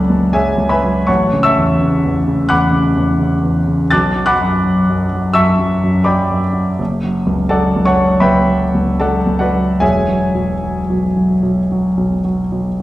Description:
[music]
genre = classical, impressionist solo piano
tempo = 73-87 BPM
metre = 4/4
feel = rubato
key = B minor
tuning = A4 = 441 Hz
[part]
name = warm concert grand piano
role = solo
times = 0.0-12.8 s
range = E1 to A6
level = -12 LUFS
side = equal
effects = none
[sound]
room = wet recital hall reverb, RT60 1.5 s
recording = heard from further back in the room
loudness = -12 LUFS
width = side -16 dB against mid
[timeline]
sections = 0.0-12.8 A section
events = none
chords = 0.0 F#m9; 1.1 A69; 3.9 Bm7; 6.8 F#m7; 9.8 Eadd9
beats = 0.35 | 1.08 1.81 2.50 3.21 | 3.92 4.65 5.37 6.08 | 6.80 7.52 8.25 9.02 | 9.82 10.63 11.44 12.24

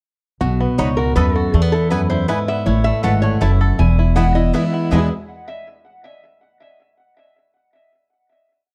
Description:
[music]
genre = bluegrass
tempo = 160 BPM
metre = 3/4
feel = straight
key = E major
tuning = A4 = 440 Hz
[part]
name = picked steel-string acoustic guitar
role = accompaniment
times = 0.4-5.1 s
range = E2 to E4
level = -21 LUFS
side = equal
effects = none
[part]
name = bluegrass banjo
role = arpeggios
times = 0.4-5.1 s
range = E3 to A4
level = -28 LUFS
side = equal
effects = plate reverb
[part]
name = upright bass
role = bass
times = 0.4-5.1 s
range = E1 to E2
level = -20 LUFS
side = equal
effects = none
[part]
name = lap resonator guitar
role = melody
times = 0.8-5.1 s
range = G#4 to G#5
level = -26 LUFS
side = equal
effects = plate reverb, tape echo
[part]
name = mandolin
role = stabs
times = 0.8-5.1 s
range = A3 to B5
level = -31 LUFS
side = equal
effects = plate reverb
[sound]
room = light reverb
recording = dark, warm production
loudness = -17 LUFS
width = mono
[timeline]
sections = 0.4-4.9 A section; 4.9-6.0 final chord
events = none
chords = 0.4 B; 1.5 E; 2.7 A; 3.8 E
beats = | 0.41 0.79 1.16 | 1.54 1.92 2.29 | 2.67 3.04 3.42 | 3.79 4.16 4.54 | 4.91

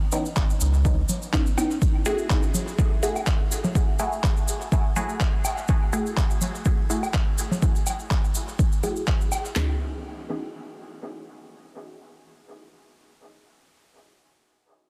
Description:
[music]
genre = dub techno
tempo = 124 BPM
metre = 4/4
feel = swing 55% on 16ths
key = C# minor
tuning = A4 = 438 Hz
[part]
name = filtered dub chord stab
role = stabs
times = 0.1-14.4 s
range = E3 to G#4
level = -33 LUFS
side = equal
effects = phaser, sidechain pumping, dub echo
[part]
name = cabasa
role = percussion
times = 0.1-9.5 s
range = none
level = -36 LUFS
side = equal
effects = none
[part]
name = woodblock and congas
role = percussion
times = 0.1-9.4 s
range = none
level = -34 LUFS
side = equal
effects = overdrive, sidechain pumping on perc, dub echo
[part]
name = warm sub bass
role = bass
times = 0.4-1.0 s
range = G#1 to C#2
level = -24 LUFS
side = equal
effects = sidechain pumping
[part]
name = deep house drum kit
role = drums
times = 0.4-9.7 s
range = handclaps, kick drum, snare drum, toms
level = -25 LUFS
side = equal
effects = none
[part]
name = electronic handclaps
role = drums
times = 0.4-9.2 s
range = none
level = -37 LUFS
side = equal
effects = soft clipping on snare, dub echo
[sound]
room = light reverb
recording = dense, heavily limited modern master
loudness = -24 LUFS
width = mono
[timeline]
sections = 0.0-9.6 A section; 9.6-13.4 B section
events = none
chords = 0.0 C#m9; 1.8 F#m9; 9.6 C#m9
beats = 0.37 0.85 1.33 | 1.82 2.30 2.79 3.27 | 3.75 4.24 4.72 5.21 | 5.69 6.17 6.66 7.14 | 7.62 8.11 8.59 9.08 | 9.56 10.04 10.53 11.01 | 11.49 11.98 12.46 12.95

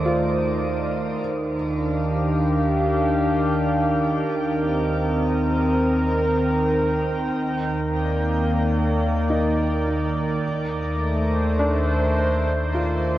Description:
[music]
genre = ambient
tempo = 78 BPM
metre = 4/4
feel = straight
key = unclear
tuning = A4 = 435 Hz
[part]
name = warm analog pad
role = sustained chords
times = 0.0-13.2 s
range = Eb3 to G5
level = -21 LUFS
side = equal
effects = chorus
[part]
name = warm sub bass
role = bass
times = 0.0-13.2 s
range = Eb2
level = -27 LUFS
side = equal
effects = tube saturation
[part]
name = felt-muted upright piano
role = arpeggios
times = 0.1-1.5, 9.3-13.2 s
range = D4 to F4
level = -30 LUFS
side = left 1 dB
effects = diffuse ambient delay
[sound]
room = wet shimmer reverb, RT60 7.4 s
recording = worn, warbling old tape, cassette tape, warbly pitch drift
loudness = -20 LUFS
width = side -14 dB against mid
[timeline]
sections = 0.0-13.2 A section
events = fade-in on sub bass 0.0-13.2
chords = 0.0 Cm69/Eb; 1.2 Ebmaj9; 4.3 F9sus4/Eb; 7.3 Cm9/Eb; 10.4 Cm69/Eb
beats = 0.43 | 1.20 1.97 2.73 3.50 | 4.27 5.04 5.81 6.58 | 7.35 8.12 8.89 9.66 | 10.43 11.20 11.96 12.73

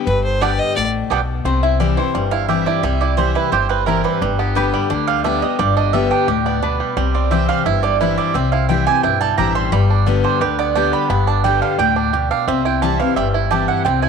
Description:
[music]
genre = bluegrass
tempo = 174 BPM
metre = 4/4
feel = straight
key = unclear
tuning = A4 = 440 Hz
[part]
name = picked steel-string acoustic guitar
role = accompaniment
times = 0.0-14.1 s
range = G2 to G4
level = -20 LUFS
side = left 8 dB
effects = none
[part]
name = clear fiddle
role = melody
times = 0.1-0.9 s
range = B4 to Eb5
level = -22 LUFS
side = right 1 dB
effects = none
[part]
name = upright bass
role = bass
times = 0.1-14.1 s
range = G1 to D2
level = -22 LUFS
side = equal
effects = none
[part]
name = bluegrass banjo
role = arpeggios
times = 0.4-14.1 s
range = D3 to G4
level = -22 LUFS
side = right 11 dB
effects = none
[part]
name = mandolin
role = stabs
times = 0.4-14.1 s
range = B3 to C6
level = -20 LUFS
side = right 11 dB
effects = none
[part]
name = lap resonator guitar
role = second line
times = 1.5-2.2, 4.4-7.1 s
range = G4 to E5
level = -26 LUFS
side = left 11 dB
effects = none
[sound]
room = light reverb, small room ambience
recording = 1960s-style stereo with parts hard left and right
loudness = -15 LUFS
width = side -6 dB against mid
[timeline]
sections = 0.0-1.5 A section; 1.5-14.1 B section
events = mandolin solo 1.5-14.1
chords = 0.0 G; 1.5 C; 4.2 G; 7.0 C; 9.7 G; 12.5 C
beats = | 0.07 0.42 0.77 1.11 | 1.46 1.80 2.15 2.49 | 2.83 3.18 3.52 3.87 | 4.21 4.56 4.90 5.25 | 5.59 5.94 6.28 6.63 | 6.97 7.32 7.66 8.01 | 8.35 8.69 9.04 9.38 | 9.73 10.07 10.41 10.76 | 11.10 11.45 11.79 12.14 | 12.48 12.82 13.17 13.51 | 13.86

